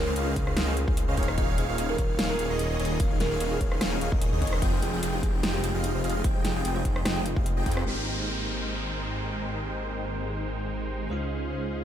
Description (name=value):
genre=future bass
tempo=148 BPM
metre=4/4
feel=swing 54% on 16ths, half-time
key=unclear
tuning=A4 = 440 Hz
part: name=buzzing kalimba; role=melody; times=0.0-7.8 s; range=G4 to Eb5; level=-35 LUFS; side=right 1 dB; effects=sidechain pumping, ping-pong delay
part: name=airy breathy pad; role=sustained chords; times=0.0-11.8 s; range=Db3 to C5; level=-39 LUFS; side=left 1 dB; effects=none
part: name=airy dreamy lead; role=arpeggios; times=0.0-7.8 s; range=Eb5 to G5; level=-39 LUFS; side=left 1 dB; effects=chorus, cassette tape, sidechain pumping, ping-pong delay
part: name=soft round pluck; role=arpeggios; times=0.0-7.8 s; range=Eb4 to Ab5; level=-42 LUFS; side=right 2 dB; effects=none
part: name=supersaw chords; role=riff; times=0.0-11.8 s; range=Eb3 to G5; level=-33 LUFS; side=right 1 dB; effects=phaser, sidechain pumping, low-pass filter
part: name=wide detuned saw bass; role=bass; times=0.0-11.8 s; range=Eb1 to F2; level=-31 LUFS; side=equal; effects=chorus, tube saturation, sidechain pumping
part: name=big-room dance drum kit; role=drums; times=0.2-11.8 s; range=crash cymbal, hi-hat, rim click, snare drum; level=-32 LUFS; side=equal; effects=low-pass filter on hats, low-pass filter on cymbals, low-pass filter on snare, low-pass filter on room
part: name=electronic kick drum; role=drums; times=0.4-7.7 s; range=none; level=-27 LUFS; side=equal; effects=none
part: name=bell-like tine electric piano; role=accompaniment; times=7.8-11.8 s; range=Ab3 to C5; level=-39 LUFS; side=right 2 dB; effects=phaser, sidechain pumping, ping-pong delay
part: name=downlifter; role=sound effects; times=7.9-11.1 s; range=none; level=-36 LUFS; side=equal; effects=none
room=light reverb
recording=none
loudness=-25 LUFS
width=side -10 dB against mid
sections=0.0-7.9 A section; 7.9-11.8 B section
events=drop 0.0-7.9; band accent 7.8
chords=0.0 Dbmaj9; 1.2 Eb7sus4; 4.6 Fm9; 7.9 Abmaj9; 11.1 Dbmaj9